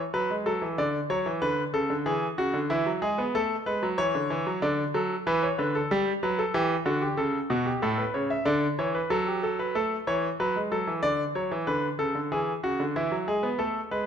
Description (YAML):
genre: classical, baroque-style two-part invention for grand piano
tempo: 94 BPM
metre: 4/4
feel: straight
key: D major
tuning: A4 = 440 Hz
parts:
  - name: bright concert grand piano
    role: solo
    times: 0.1-14.1 s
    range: A2 to E5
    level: -25 LUFS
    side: equal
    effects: none
room: moderate recital hall reverb, RT60 1.4 s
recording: nothing above 10.9 kHz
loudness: -25 LUFS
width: side -8 dB against mid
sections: 0.0-14.1 A section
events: none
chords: 0.0 A5; 0.8 D; 2.1 E7; 3.3 A; 4.6 D; 5.9 G5; 7.2 A7; 8.5 D; 9.7 A; 11.0 D; 12.3 E